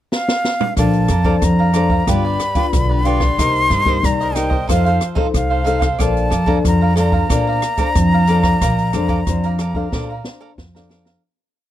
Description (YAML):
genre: samba and choro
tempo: 92 BPM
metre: 4/4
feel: straight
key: Bb major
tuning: A4 = 439 Hz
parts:
  - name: breathy jazz flute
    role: melody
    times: 0.1-10.5 s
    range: F5 to C6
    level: -21 LUFS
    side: left 1 dB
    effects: none
  - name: open jazz drum kit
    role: drums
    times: 0.1-11.2 s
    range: hi-hat, kick drum, rim click, snare drum, toms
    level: -21 LUFS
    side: equal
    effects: none
  - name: cavaquinho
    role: accompaniment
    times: 0.8-11.2 s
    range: Eb4 to Bb5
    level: -24 LUFS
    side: right 8 dB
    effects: none
  - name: nylon-string guitar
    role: accompaniment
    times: 0.8-11.2 s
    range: C3 to C5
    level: -22 LUFS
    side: left 7 dB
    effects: none
  - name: upright bass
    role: bass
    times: 0.8-11.1 s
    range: G1 to Bb2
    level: -18 LUFS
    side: right 1 dB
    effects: none
room: studio ambience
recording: dry, close 1970s-style studio recording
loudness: -14 LUFS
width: side -12 dB against mid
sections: 0.0-0.8 pickup bar; 0.8-11.2 A section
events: drum fill 0.1-0.8, 9.9-11.2; fade-out 8.6-11.2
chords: 0.0 N.C.; 0.8 Bbmaj9; 2.1 G7; 3.4 Cm7; 4.7 F7; 6.0 Bbmaj9